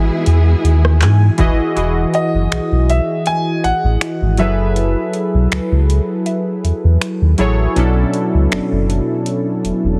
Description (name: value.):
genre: contemporary R&B.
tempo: 80 BPM.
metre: 4/4.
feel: swing 54% on 16ths.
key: E major.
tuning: A4 = 440 Hz.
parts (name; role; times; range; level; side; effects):
warm grand piano; melody; 0.0-7.4 s; D#5 to G#5; -23 LUFS; equal; none.
warm analog keys; accompaniment; 0.0-10.0 s; B2 to G#5; -20 LUFS; equal; chorus.
warm studio string section; sustained chords; 0.0-1.7 s; G#3 to G#4; -28 LUFS; equal; none.
mallet-like synth pluck; texture; 0.0-8.1 s; E5 to B5; -34 LUFS; equal; chorus, phaser, tape echo.
sub bass with octave; bass; 0.3-10.0 s; D#1 to G#2; -16 LUFS; equal; none.
booming analog drum machine; drums; 0.3-9.8 s; finger snaps, handclaps, hi-hat, kick drum, rim click; -22 LUFS; equal; none.
room: little or no reverb.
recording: heavily compressed radio sound, multiband compression.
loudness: -15 LUFS.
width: mono.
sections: 0.0-1.8 A section; 1.8-10.0 B section.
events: synth keys fill 0.6-1.8; break 1.8-10.0.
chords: 0.0 Emaj7; 1.8 Emaj9; 4.4 F#m11; 7.8 Bm11.